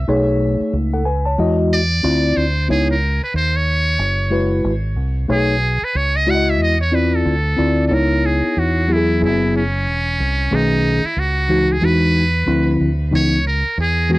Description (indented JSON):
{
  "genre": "hip hop, jazz-hop",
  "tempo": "92 BPM",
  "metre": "4/4",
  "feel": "swing 60% on 16ths",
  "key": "unclear",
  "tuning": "A4 = 442 Hz",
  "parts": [
    { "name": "trumpet with metal mute", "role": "melody", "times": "0.0-14.2 s", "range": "C#4 to F#5", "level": "-20 LUFS", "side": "right 1 dB", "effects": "cassette tape, analog delay" },
    { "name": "deep dub fingered electric bass", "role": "bass", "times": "0.0-14.2 s", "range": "E1 to E2", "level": "-19 LUFS", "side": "equal", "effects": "none" },
    { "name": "mellow tine electric piano", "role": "accompaniment", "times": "0.1-14.2 s", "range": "C#3 to A5", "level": "-17 LUFS", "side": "left 1 dB", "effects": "analog chorus, cassette tape" }
  ],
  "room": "little or no reverb",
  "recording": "home recording on cassette",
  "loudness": "-15 LUFS",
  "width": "side -19 dB against mid",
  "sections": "0.0-7.9 A section; 7.9-14.2 B section",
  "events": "muted trumpet solo 0.0-7.9",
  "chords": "0.1 B13; 1.4 Emaj9; 2.0 Dm9; 2.7 C#m9; 4.0 F#9sus4; 5.3 B13; 6.6 Emaj9; 7.3 Dm9; 7.9 C#m9; 9.2 F#9sus4; 10.5 B13; 11.8 Emaj9; 12.5 Dm9; 13.1 C#m9"
}